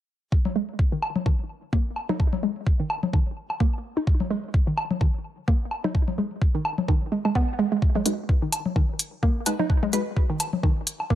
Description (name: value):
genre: minimal techno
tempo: 128 BPM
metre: 4/4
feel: swing 56% on 16ths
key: G# minor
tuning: A4 = 440 Hz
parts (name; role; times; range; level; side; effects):
- electronic kick drum; drums; 0.3-11.2 s; none; -22 LUFS; equal; none
- congas and woodblock; percussion; 0.5-11.1 s; none; -29 LUFS; left 4 dB; tape echo
- hollow square pluck; riff; 0.6-11.2 s; D#3 to D#4; -28 LUFS; right 2 dB; chorus, phaser, sidechain pumping, tape echo
- filtered dub chord stab; stabs; 8.1-10.0 s; G#3 to B4; -30 LUFS; left 1 dB; phaser, wide subtle chorus, tape echo
- electronic hi-hat; drums; 8.1-11.0 s; none; -26 LUFS; left 1 dB; none
room: digital ambience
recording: none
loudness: -22 LUFS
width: side -12 dB against mid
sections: 0.3-11.2 A section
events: filter sweep on synth arpeggio sound 0.3-11.2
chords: 0.3 G#5